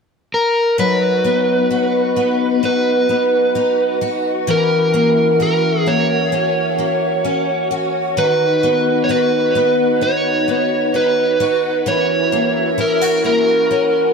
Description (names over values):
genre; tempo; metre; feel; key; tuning
dream pop; 65 BPM; 4/4; straight; B major; A4 = 440 Hz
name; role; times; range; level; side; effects
overdriven slide guitar; melody; 0.3-14.1 s; A#4 to C#5; -16 LUFS; right 1 dB; tape echo
hollow large flute ensemble; sustained chords; 0.8-14.1 s; C#4 to F#5; -21 LUFS; equal; none
picked twelve-string acoustic guitar; arpeggios; 0.8-14.1 s; D#3 to F#4; -19 LUFS; left 3 dB; ensemble chorus, tape echo
room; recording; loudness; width
wet spring reverb, RT60 2.3 s; echo-heavy mix; -14 LUFS; side -5 dB against mid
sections
0.8-14.1 A section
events
none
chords
0.0 N.C.; 0.8 B; 4.5 F#7; 8.2 B; 11.9 F#7